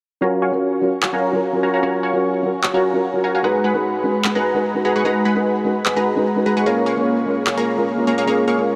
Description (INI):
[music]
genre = future bass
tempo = 149 BPM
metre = 4/4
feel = swing 53% on 16ths, half-time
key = F# major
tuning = A4 = 443 Hz
[part]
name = felt-muted upright piano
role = accompaniment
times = 0.2-8.8 s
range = F#3 to B4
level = -23 LUFS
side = equal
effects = digital delay
[part]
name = supersaw stab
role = riff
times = 0.2-8.8 s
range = G#3 to C#6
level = -21 LUFS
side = equal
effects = low-pass filter, digital delay
[part]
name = electronic handclaps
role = drums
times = 1.0-7.6 s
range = none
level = -25 LUFS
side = equal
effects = overdrive
[sound]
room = moderate shimmer reverb, RT60 8.9 s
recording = none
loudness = -19 LUFS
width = mono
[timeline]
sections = 0.2-8.8 A section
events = none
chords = 0.2 F#maj7; 3.4 G#m7; 6.7 A#m7